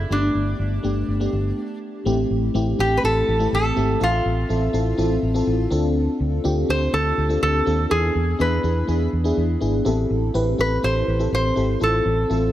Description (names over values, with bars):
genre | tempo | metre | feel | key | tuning
1980s-style pop | 123 BPM | 4/4 | straight | A minor | A4 = 440 Hz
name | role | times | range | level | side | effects
metal-body resonator slide guitar | melody | 0.0-12.5 s | D4 to C5 | -23 LUFS | equal | tape echo
FM electric piano with soft pad layer | accompaniment | 0.0-12.5 s | A3 to E5 | -23 LUFS | left 1 dB | chorus, tremolo
vintage muted fingered electric bass | bass | 0.0-12.5 s | G1 to E2 | -22 LUFS | equal | none
room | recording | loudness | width
light reverb, studio reverb | none | -18 LUFS | side -13 dB against mid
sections
0.0-2.1 A section; 2.1-12.5 B section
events
break 1.6-2.1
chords
0.1 Gadd9; 2.1 Am7; 4.0 Fmaj7/A; 5.7 Dm7; 7.9 E7; 9.9 Am7; 11.8 Fmaj7/A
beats
| 0.11 0.59 1.08 1.57 | 2.06 2.54 3.03 3.52 | 4.01 4.50 4.98 5.47 | 5.96 6.45 6.93 7.42 | 7.91 8.40 8.89 9.37 | 9.86 10.35 10.84 11.32 | 11.81 12.30